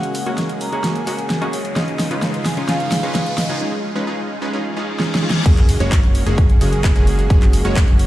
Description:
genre	EDM, festival progressive house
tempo	130 BPM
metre	4/4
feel	straight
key	unclear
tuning	A4 = 440 Hz
part	vibraphone with medium hard mallets	melody	0.0-3.6 s	Db5 to Bb5	-28 LUFS	equal	dub echo
part	semi-hollow electric guitar	accompaniment	0.0-3.6 s	Db3 to Gb4	-30 LUFS	left 2 dB	vintage 12-bit sampler grit, sidechain pumping
part	lush unison pad	sustained chords	0.0-8.1 s	Db3 to Ab4	-30 LUFS	equal	chorus, sidechain pumping
part	supersaw stab	riff	0.0-8.1 s	Ab3 to Db5	-24 LUFS	right 1 dB	sidechain pumping, low-pass filter, dub echo
part	fat analog bass	bass	0.0-8.1 s	Gb1 to Gb2	-22 LUFS	equal	sidechain pumping, high-pass filter
part	big-room dance drum kit	drums	0.0-8.1 s	crash cymbal, handclaps, hi-hat, snare drum	-23 LUFS	equal	overdrive
part	riser, reverse cymbal and sub drop	sound effects	1.1-7.3 s	none	-29 LUFS	equal	none
part	dark grand piano	arpeggios	5.5-8.1 s	Ab4 to Db5	-26 LUFS	right 2 dB	sidechain pumping, dub echo
part	electronic kick drum	drums	5.5-7.9 s	none	-13 LUFS	equal	overdrive
room	light reverb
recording	played on a big sound system in a bare room, stone room reverb, lossy compression artefacts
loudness	-15 LUFS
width	side -14 dB against mid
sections	0.0-5.5 A section; 5.5-8.1 B section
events	build-up 0.0-5.5; drum fill 0.0-3.6, 5.0-5.5; filter sweep on supersaw synth 0.0-5.5; riser 1.1-3.6; reverse cymbal 4.7-5.5; drop 5.5-8.1; impact 5.5-7.3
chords	0.0 Gbadd9; 1.8 Dbadd9; 5.5 Gbadd9

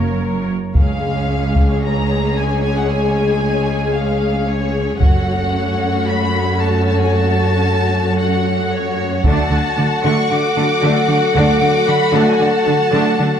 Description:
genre	cinematic, epic orchestral film score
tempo	113 BPM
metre	4/4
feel	straight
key	unclear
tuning	A4 = 440 Hz
part	warm symphonic violin section	second line	0.0-13.4 s	Gb4 to F#5	-22 LUFS	left 3 dB	none
part	rich symphonic viola section	accompaniment	0.0-13.3 s	Ab3 to Db5	-22 LUFS	right 1 dB	none
part	dark French horn section	sustained chords	0.0-13.4 s	F#3 to A4	-21 LUFS	left 2 dB	none
part	rich symphonic cello section	bass	0.0-13.3 s	Db2 to D3	-19 LUFS	right 2 dB	none
part	rich symphonic double bass section	bass	0.0-1.3, 5.0-5.5, 9.2-11.6 s	Gb1 to D2	-23 LUFS	right 3 dB	none
part	rich symphonic violin section	melody	0.8-13.4 s	Db5 to D6	-23 LUFS	left 2 dB	none
part	taiko ensemble	drums	0.8-6.0, 9.2-10.3 s	none	-16 LUFS	equal	none
room	wet scoring stage reverb, RT60 1.7 s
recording	dark, warm production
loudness	-14 LUFS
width	side -8 dB against mid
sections	0.8-13.4 A section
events	none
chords	0.0 Gb; 0.8 Db; 5.0 Gbm; 9.2 D

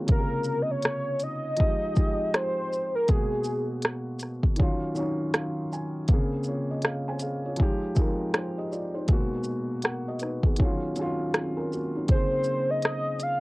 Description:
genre	lo-fi hip hop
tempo	80 BPM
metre	4/4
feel	swing 60% on 16ths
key	Bb minor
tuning	A4 = 443 Hz
part	felt-muted upright piano	accompaniment	0.0-13.4 s	Bb2 to Ab5	-29 LUFS	equal	cassette tape
part	warm velvety synth lead	melody	0.1-3.8, 12.1-13.4 s	Ab4 to F5	-28 LUFS	equal	chorus, cassette tape, plate reverb
part	organic electronic drum kit	drums	0.1-13.4 s	hi-hat, kick drum, rim click, shaker	-24 LUFS	equal	cassette tape
room	light reverb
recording	home recording on cassette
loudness	-25 LUFS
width	side -21 dB against mid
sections	0.1-13.4 A section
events	felt piano fill 4.6-6.1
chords	0.1 Bbm9; 1.6 Fm9; 3.1 Abm9; 4.6 Ebm9; 6.1 Bbm9; 7.6 Fm9; 9.1 Abm9; 10.6 Ebm9; 12.1 Bbm9

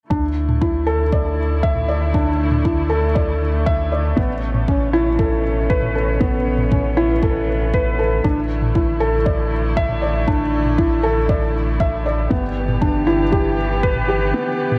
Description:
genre	piano and strings electronica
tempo	118 BPM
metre	4/4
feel	straight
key	unclear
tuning	A4 = 445 Hz
part	muted string quartet	sustained chords	0.1-14.8 s	B2 to G4	-29 LUFS	equal	sidechain pumping, shimmer reverb
part	felt-muted upright piano	riff	0.1-14.8 s	B3 to E5	-22 LUFS	equal	delay, shimmer reverb
part	round analog bass	bass	0.1-14.3 s	G1 to D2	-24 LUFS	equal	sidechain pumping
part	electronic kick drum	drums	0.1-13.9 s	none	-23 LUFS	equal	studio reverb
part	electronic toms	drums	0.5-14.8 s	none	-26 LUFS	equal	overdrive, studio reverb
room	light reverb, small room reverb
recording	dark, warm production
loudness	-19 LUFS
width	mono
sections	0.1-14.8 A section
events	none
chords	0.1 Dsus2; 4.2 Aadd9; 8.2 Dsus2/A; 12.3 G6

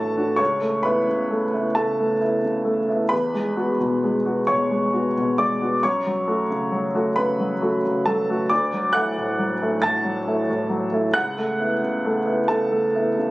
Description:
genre	neoclassical minimalist piano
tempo	44 BPM (dotted quarters)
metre	6/8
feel	rubato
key	A major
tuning	A4 = 441 Hz
part	clear upright piano	solo	0.0-13.3 s	C#2 to A6	-19 LUFS	equal	none
room	light reverb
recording	recorded on a phone in the room, studio ambience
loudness	-19 LUFS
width	side -18 dB against mid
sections	0.0-13.3 A section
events	none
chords	0.4 Aadd9/C#; 3.1 Eadd9; 5.8 F#m; 8.5 Dadd9; 11.2 Aadd9/C#

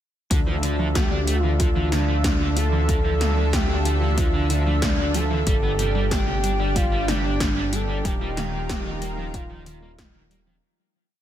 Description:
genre	synthwave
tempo	93 BPM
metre	4/4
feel	straight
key	unclear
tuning	A4 = 438 Hz
part	lush unison pad	sustained chords	0.3-10.6 s	D3 to E5	-31 LUFS	equal	chorus, sidechain pumping
part	wide unison pluck	arpeggios	0.3-10.5 s	C3 to G3	-32 LUFS	right 2 dB	ping-pong delay
part	overdriven electric guitar	riff	0.3-10.5 s	D3 to G4	-32 LUFS	right 1 dB	lush chorus, ping-pong delay
part	wide detuned saw bass	bass	0.3-10.6 s	Eb1 to D2	-24 LUFS	equal	chorus, tube saturation, sidechain pumping
part	80s electronic pad drums	drums	0.3-10.4 s	hi-hat, snare drum	-29 LUFS	equal	none
part	electronic kick drum	drums	0.3-10.1 s	none	-24 LUFS	equal	none
part	expressive portamento lead	melody	0.9-10.3 s	D4 to A4	-28 LUFS	equal	chorus, tape echo
room	light reverb, digital ambience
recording	dense, heavily limited modern master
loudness	-20 LUFS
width	side -11 dB against mid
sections	0.3-10.6 verse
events	fade-out 7.2-10.6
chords	0.3 Dmadd9; 5.5 Gsus4; 8.1 Ebadd9

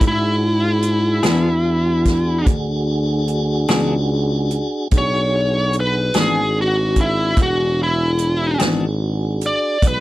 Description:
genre	slow blues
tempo	49 BPM (dotted quarters)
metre	12/8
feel	straight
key	E mixolydian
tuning	A4 = 444 Hz
part	smooth overdriven lead guitar	melody	0.0-10.0 s	E4 to D5	-19 LUFS	equal	none
part	tonewheel organ	sustained chords	0.0-10.0 s	G#3 to F#5	-25 LUFS	right 1 dB	slow rotary speaker
part	dark tuba	bass	0.0-10.0 s	E1 to G#2	-20 LUFS	equal	none
part	swinging big-band drum kit	drums	0.0-10.0 s	hi-hat, kick drum, snare drum	-18 LUFS	equal	none
part	clean electric guitar	accompaniment	1.2-8.9 s	E3 to G#4	-20 LUFS	left 4 dB	harmonic tremolo
room	little or no reverb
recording	none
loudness	-16 LUFS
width	side -16 dB against mid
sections	0.0-10.0 A section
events	lead electric guitar solo 0.0-10.0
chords	0.0 E7

